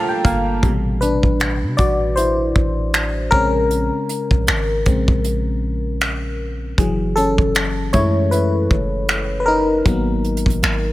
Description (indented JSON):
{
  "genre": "contemporary R&B",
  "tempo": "78 BPM",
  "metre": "4/4",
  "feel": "swing 58% on 16ths",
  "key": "unclear",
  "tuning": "A4 = 440 Hz",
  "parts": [
    { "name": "FM electric piano", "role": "accompaniment", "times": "0.0-10.9 s", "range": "B2 to Bb5", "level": "-19 LUFS", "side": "left 2 dB", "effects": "chorus" },
    { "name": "clear studio string section", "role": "sustained chords", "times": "0.0-0.6 s", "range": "G4 to G5", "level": "-35 LUFS", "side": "left 2 dB", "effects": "none" },
    { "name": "direct-recorded clean electric guitar", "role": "arpeggios", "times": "0.0-1.2 s", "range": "G3 to A4", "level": "-25 LUFS", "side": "right 6 dB", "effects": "tape echo" },
    { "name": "warm 808-style bass", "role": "bass", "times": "0.2-10.9 s", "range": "F#1 to C3", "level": "-21 LUFS", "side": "equal", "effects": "none" },
    { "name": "soft brush drum kit", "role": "drums", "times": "0.2-10.8 s", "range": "finger snaps, hi-hat, kick drum", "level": "-20 LUFS", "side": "equal", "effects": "none" }
  ],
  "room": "small room reverb",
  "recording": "none",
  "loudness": "-16 LUFS",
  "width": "side -16 dB against mid",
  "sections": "0.6-10.9 A section",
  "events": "FM electric piano fill 0.0-0.6; FM electric piano solo 0.6-10.9",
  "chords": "0.0 Gm9; 0.6 Am9; 3.3 Bbm9; 6.8 F#m9; 9.9 Abm9"
}